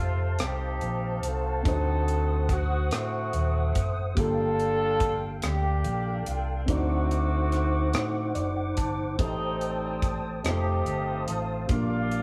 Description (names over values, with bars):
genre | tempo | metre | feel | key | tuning
slow gospel | 48 BPM (dotted quarters) | 6/8 | straight | unclear | A4 = 441 Hz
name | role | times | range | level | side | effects
mellow horn section | melody | 0.0-12.2 s | G3 to A4 | -34 LUFS | equal | none
dark concert grand piano | accompaniment | 0.0-12.2 s | G2 to A5 | -36 LUFS | equal | none
mellow tonewheel organ | sustained chords | 0.0-12.2 s | Eb4 to Eb6 | -36 LUFS | equal | fast rotary speaker, chorus vibrato
fingered electric bass | bass | 0.0-12.2 s | Eb1 to A2 | -31 LUFS | equal | none
crisp fusion drum kit | drums | 0.4-12.2 s | hi-hat, kick drum, rim click | -32 LUFS | equal | none
room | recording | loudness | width
moderate stone room reverb, RT60 1.1 s | band playing live in one room | -27 LUFS | mono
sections
0.0-12.2 A section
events
grand piano fill 7.9-9.2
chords
0.0 F13; 1.7 D7b9; 4.2 Gm9; 6.7 D7b9; 9.2 Am7b5; 10.4 F7; 11.7 Bb6